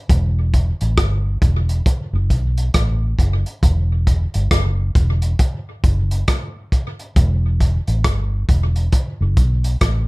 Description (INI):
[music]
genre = roots reggae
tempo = 68 BPM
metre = 4/4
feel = swing 61% on 16ths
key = E minor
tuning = A4 = 442 Hz
[part]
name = vintage muted fingered electric bass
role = bass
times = 0.1-10.1 s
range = E1 to B1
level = -17 LUFS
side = equal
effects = none
[part]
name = crunchy breakbeat drum kit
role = drums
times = 0.1-10.1 s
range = hi-hat, kick drum, rim click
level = -18 LUFS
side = equal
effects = none
[sound]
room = little or no reverb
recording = dark, warm production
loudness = -16 LUFS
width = side -24 dB against mid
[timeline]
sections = 0.0-10.1 A section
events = none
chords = none